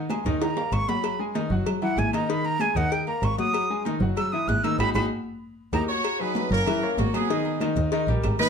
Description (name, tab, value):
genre	latin, salsa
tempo	192 BPM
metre	4/4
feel	straight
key	G# minor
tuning	A4 = 440 Hz
part	bright grand piano	accompaniment	0.0-8.5 s	D#3 to A#5	-28 LUFS	left 3 dB	none
part	claves	percussion	0.1-8.4 s	none	-41 LUFS	right 7 dB	none
part	congas	percussion	0.1-8.5 s	none	-32 LUFS	left 1 dB	none
part	cowbell	percussion	0.1-8.5 s	none	-34 LUFS	left 8 dB	none
part	timbales and agogo bells	percussion	0.1-8.4 s	none	-34 LUFS	right 7 dB	none
part	dark double bass	bass	0.3-8.3 s	F#1 to D#2	-26 LUFS	right 1 dB	none
part	breathy bright concert flute	melody	0.4-5.8 s	F#5 to F#6	-27 LUFS	right 2 dB	plate reverb
part	clear horn section	melody	5.9-8.5 s	A#3 to C#5	-26 LUFS	right 2 dB	none
room	moderate studio reverb, RT60 0.7 s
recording	dark, warm production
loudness	-22 LUFS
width	side -6 dB against mid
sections	0.0-6.0 A section; 6.0-8.5 B section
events	flute solo 0.0-6.0; drum fill 0.4-1.0, 5.1-6.0; band accent 4.8-6.0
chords	0.4 D#5; 1.0 G#5; 1.7 F#13; 2.3 G#5; 2.9 D#5; 3.5 G#5; 4.2 Emaj9; 4.8 G#m7; 5.4 D#; 6.0 G#m7; 6.7 F#7; 7.3 G#m; 7.9 D#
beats	0.10 0.41 0.73 | 1.04 1.35 1.67 1.98 | 2.29 2.60 2.92 3.23 | 3.54 3.86 4.17 4.48 | 4.80 5.11 5.42 5.74 | 6.05 6.36 6.67 6.99 | 7.30 7.61 7.92 8.23